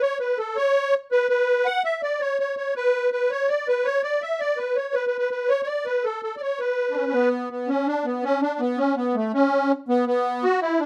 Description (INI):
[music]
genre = celtic folk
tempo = 109 BPM (dotted quarters)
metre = 6/8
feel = straight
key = B minor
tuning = A4 = 440 Hz
[part]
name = musette accordion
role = solo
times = 0.0-10.9 s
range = A3 to F#5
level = -23 LUFS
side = equal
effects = none
[sound]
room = light reverb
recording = none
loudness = -23 LUFS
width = mono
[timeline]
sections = 0.0-7.7 A section; 7.7-10.9 A section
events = none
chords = none